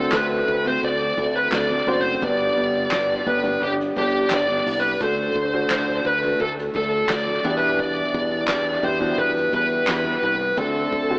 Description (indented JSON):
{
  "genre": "piano-driven pop",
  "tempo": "86 BPM",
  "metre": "4/4",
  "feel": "straight",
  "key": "unclear",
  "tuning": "A4 = 435 Hz",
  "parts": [
    { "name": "bluesy overdriven lead guitar", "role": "melody", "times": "0.0-11.2 s", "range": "G4 to D5", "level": "-22 LUFS", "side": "equal", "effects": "distortion, dub echo" },
    { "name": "warm upright piano", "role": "accompaniment", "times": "0.0-11.2 s", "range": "G2 to D5", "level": "-26 LUFS", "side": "equal", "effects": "dub echo" },
    { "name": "picked steel-string acoustic guitar", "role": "riff", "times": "0.0-11.2 s", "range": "E2 to G4", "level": "-27 LUFS", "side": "equal", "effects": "dub echo" },
    { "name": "fingered electric bass", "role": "bass", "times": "0.0-11.2 s", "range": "F#1 to E2", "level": "-29 LUFS", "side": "equal", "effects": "none" },
    { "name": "soft-mallet drum kit", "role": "drums", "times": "0.1-11.2 s", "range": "handclaps, hi-hat, kick drum, ride cymbal, snare drum", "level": "-30 LUFS", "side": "equal", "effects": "dub echo" }
  ],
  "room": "light reverb, small room ambience",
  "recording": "echo-heavy mix, AM radio sound",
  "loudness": "-19 LUFS",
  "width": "side -32 dB against mid",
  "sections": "0.0-11.2 A section",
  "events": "none",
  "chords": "0.0 D7; 2.2 G; 5.0 D; 7.4 Em7; 10.6 D7",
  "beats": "0.13 0.83 1.52 | 2.22 2.92 3.61 4.31 | 5.01 5.70 6.40 7.09 | 7.79 8.49 9.18 9.88 | 10.58"
}